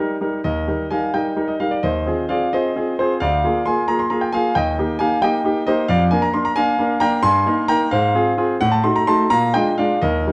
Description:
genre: classical-period piano sonatina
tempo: 88 BPM (dotted quarters)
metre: 6/8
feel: rubato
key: Eb major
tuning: A4 = 444 Hz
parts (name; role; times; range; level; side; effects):
- clear concert grand piano; solo; 0.0-10.3 s; D2 to C6; -19 LUFS; equal; none
room: moderate recital hall reverb, RT60 1.6 s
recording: dark, warm production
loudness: -19 LUFS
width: mono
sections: 0.5-10.3 A section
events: none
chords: 0.5 Eb; 1.8 Fm7/Eb; 3.2 Bb7/D; 4.6 Eb; 5.9 Bb7/F; 7.2 Eb/G; 7.9 Fm/Ab; 8.6 Adim7; 9.3 Bb7

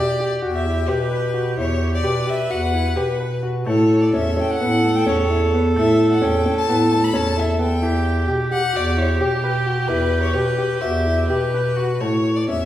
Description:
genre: contemporary instrumental, contemporary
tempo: 260 BPM (eighths)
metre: 9/8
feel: straight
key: E dorian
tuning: A4 = 440 Hz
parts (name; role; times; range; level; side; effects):
- clear violin; melody; 0.0-12.7 s; G4 to B5; -24 LUFS; left 4 dB; none
- bright viola; second line; 0.0-12.0 s; F#4 to B4; -24 LUFS; right 2 dB; none
- clear baby grand piano; arpeggios; 0.0-12.7 s; A3 to B4; -24 LUFS; left 1 dB; none
- mellow bass clarinet; bass; 0.0-12.7 s; E2 to B2; -20 LUFS; equal; none
room: wet recital hall reverb, RT60 1.4 s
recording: heard from further back in the room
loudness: -17 LUFS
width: side -12 dB against mid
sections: 0.0-12.0 A section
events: none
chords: 0.0 Emadd9; 3.7 A; 7.8 Emadd9; 12.0 E5

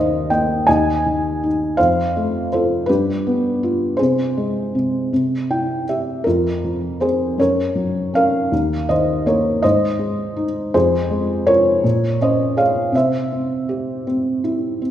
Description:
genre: classical, lyrical solo piano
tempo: 54 BPM (dotted quarters)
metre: 6/8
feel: rubato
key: F minor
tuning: A4 = 437 Hz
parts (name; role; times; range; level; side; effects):
- felt-muted upright piano; solo; 0.0-14.9 s; Eb2 to Ab5; -16 LUFS; equal; none
room: moderate scoring stage reverb, RT60 1.5 s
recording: recorded in a church or concert hall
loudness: -16 LUFS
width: side -11 dB against mid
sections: 0.0-14.9 A section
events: felt piano fill 5.1-6.3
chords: 0.0 Eb5; 0.7 N.C.; 1.8 F; 2.9 G7; 4.0 Ab/C; 5.1 C; 6.3 Fm; 7.4 Gb; 8.5 Eb5; 9.6 Ab; 10.7 Fm; 11.8 Bbm7; 12.9 C

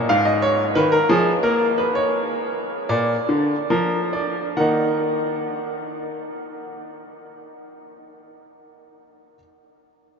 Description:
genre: classical, baroque-style two-part invention for grand piano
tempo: 65-91 BPM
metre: 4/4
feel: straight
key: Eb minor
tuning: A4 = 440 Hz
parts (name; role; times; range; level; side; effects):
- bright grand piano; solo; 0.0-9.4 s; Ab2 to Gb5; -19 LUFS; equal; none
room: wet huge ambient reverb, RT60 8.9 s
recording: in a vast, echoing space, nothing above 7.5 kHz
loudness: -18 LUFS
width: side -6 dB against mid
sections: 0.0-4.6 A section; 4.6-8.2 B section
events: slowing down 0.0-4.6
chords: 0.1 Fm7/Ab; 1.4 Bbm; 2.9 Bb; 4.6 Ebm

